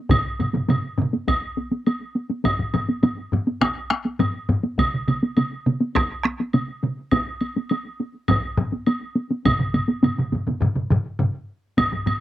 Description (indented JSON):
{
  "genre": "japanese traditional, taiko drum ensemble",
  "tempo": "103 BPM",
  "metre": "4/4",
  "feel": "straight",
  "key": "none",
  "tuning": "none",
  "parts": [
    { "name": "taiko ensemble", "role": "percussion", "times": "0.1-12.2 s", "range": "none", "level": "-22 LUFS", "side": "equal", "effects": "none" },
    { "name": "taiko ensemble", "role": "percussion", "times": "0.1-4.6, 8.3-12.2 s", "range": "none", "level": "-24 LUFS", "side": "left 2 dB", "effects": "none" },
    { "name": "taiko ensemble", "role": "percussion", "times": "0.1-1.1, 4.8-11.3 s", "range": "none", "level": "-24 LUFS", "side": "right 2 dB", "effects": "none" },
    { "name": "taiko ensemble", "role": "percussion", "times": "0.1-11.9 s", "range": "none", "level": "-26 LUFS", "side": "equal", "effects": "none" },
    { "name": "woodblock", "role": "percussion", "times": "0.1-12.2 s", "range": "none", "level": "-28 LUFS", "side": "right 1 dB", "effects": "slapback echo" }
  ],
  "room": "little or no reverb",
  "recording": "recorded outdoors, with no room sound",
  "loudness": "-20 LUFS",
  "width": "side -13 dB against mid",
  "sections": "0.0-11.8 A section",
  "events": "break 10.6-11.8",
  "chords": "none"
}